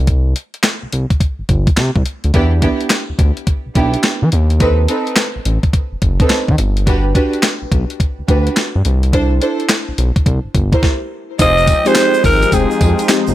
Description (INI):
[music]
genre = R&B, new jack swing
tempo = 106 BPM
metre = 4/4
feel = swing 64% on 16ths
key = unclear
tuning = A4 = 439 Hz
[part]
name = smooth gliding synth bass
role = bass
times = 0.0-13.3 s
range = F1 to E3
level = -15 LUFS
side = equal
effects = none
[part]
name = clean 12-bit digital drum machine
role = drums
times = 0.1-13.3 s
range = handclaps, hi-hat, kick drum, snare drum, tambourine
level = -15 LUFS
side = equal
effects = none
[part]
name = warm symphonic string section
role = stabs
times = 2.3-12.0 s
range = B3 to C5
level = -20 LUFS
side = right 2 dB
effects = ping-pong delay
[part]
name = raspy alto saxophone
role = melody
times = 11.4-13.1 s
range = Ab4 to Eb5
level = -14 LUFS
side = right 1 dB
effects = ping-pong delay
[part]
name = sweeping resonant pad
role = sustained chords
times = 11.4-13.3 s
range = F3 to G5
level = -22 LUFS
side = right 1 dB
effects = chorus
[part]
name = tube shaker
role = percussion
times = 11.4-13.3 s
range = none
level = -32 LUFS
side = right 7 dB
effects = none
[part]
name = mellow FM electric piano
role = accompaniment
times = 11.9-13.3 s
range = Ab3 to G5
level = -17 LUFS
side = left 6 dB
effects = chorus
[sound]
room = digital ambience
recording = none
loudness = -12 LUFS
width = side -14 dB against mid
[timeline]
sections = 0.0-11.4 A section; 11.4-13.3 B section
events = stop 10.8-11.4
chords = 0.0 C5; 2.3 Em7; 4.3 B7b9; 6.6 Gmaj7; 8.8 C69; 10.3 C5; 11.4 Fm7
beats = | 0.07 0.64 1.21 1.77 | 2.34 2.90 3.47 4.04 | 4.60 5.17 5.74 6.30 | 6.87 7.43 8.00 8.57 | 9.13 9.70 10.26 10.83 | 11.40 11.96 12.53 13.09